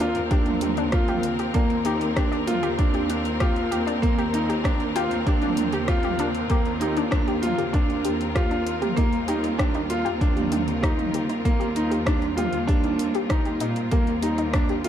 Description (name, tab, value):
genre	piano and strings electronica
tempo	97 BPM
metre	4/4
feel	straight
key	Eb major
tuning	A4 = 440 Hz
part	clear symphonic string section	sustained chords	0.0-14.9 s	G3 to Bb4	-31 LUFS	left 1 dB	none
part	warbly dusty pluck	arpeggios	0.0-14.8 s	D4 to G4	-31 LUFS	left 3 dB	chorus, sidechain pumping, ping-pong delay
part	clear baby grand piano	riff	0.0-14.9 s	Bb3 to F4	-26 LUFS	right 1 dB	ping-pong delay
part	clear studio cello section	bass	0.0-14.9 s	Eb2 to Bb2	-28 LUFS	equal	sidechain pumping
part	deep house drum kit	drums	0.0-14.9 s	hi-hat, rim click, toms	-31 LUFS	equal	none
part	electronic kick drum	drums	0.3-14.7 s	none	-23 LUFS	equal	none
room	light reverb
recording	dark, warm production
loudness	-21 LUFS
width	side -10 dB against mid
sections	0.0-14.9 A section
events	none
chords	0.0 Ebmaj9